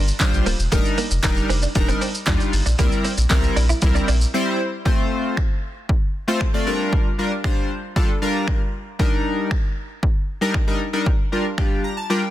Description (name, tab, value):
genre	dance-pop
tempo	116 BPM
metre	4/4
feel	straight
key	F major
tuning	A4 = 440 Hz
part	direct-recorded clean electric guitar	riff	0.0-4.2 s	A3 to E4	-28 LUFS	right 5 dB	ensemble chorus
part	warm sub bass	bass	0.0-4.2 s	D1 to Eb2	-20 LUFS	equal	sidechain pumping
part	punchy analog drum machine	drums	0.1-11.7 s	finger snaps, handclaps, hi-hat, kick drum, shaker, snare drum	-21 LUFS	equal	soft clipping on snare
part	chorused retro synth keys	accompaniment	0.2-12.3 s	G3 to Bb5	-22 LUFS	left 1 dB	sidechain pumping
part	group handclap	percussion	0.2-3.4 s	none	-34 LUFS	right 6 dB	none
room	little or no reverb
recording	dense, heavily limited modern master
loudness	-18 LUFS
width	side -13 dB against mid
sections	0.0-4.9 A section; 4.9-12.3 B section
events	break 4.3-4.9; synth keys fill 11.6-12.3; silent gap 12.1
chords	0.0 Gm7; 0.7 Ebmaj7; 2.8 C7; 4.9 F; 6.7 Gm7; 9.0 Ebmaj7; 11.1 Bb6